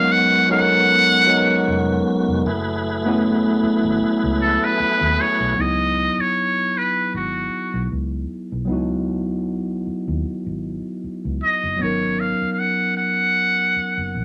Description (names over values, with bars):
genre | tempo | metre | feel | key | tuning
R&B, neo-soul | 77 BPM | 4/4 | swing 55% on 16ths | C# minor | A4 = 440 Hz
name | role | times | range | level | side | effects
trumpet with metal mute | melody | 0.0-14.2 s | F#4 to F#5 | -20 LUFS | equal | none
overdriven tine electric piano | accompaniment | 0.0-14.2 s | F#3 to A#4 | -24 LUFS | equal | none
tonewheel organ | sustained chords | 0.0-5.5 s | F#3 to B4 | -27 LUFS | equal | chorus vibrato, fast rotary speaker
vintage muted fingered electric bass | bass | 1.7-14.2 s | E#1 to D#2 | -30 LUFS | equal | none
room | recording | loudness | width
moderate studio reverb, RT60 0.6 s | none | -20 LUFS | mono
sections
0.0-5.6 A section; 5.6-14.2 B section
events
none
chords
0.0 G#m11; 2.5 F#m11; 5.6 C#m11; 11.8 G#m11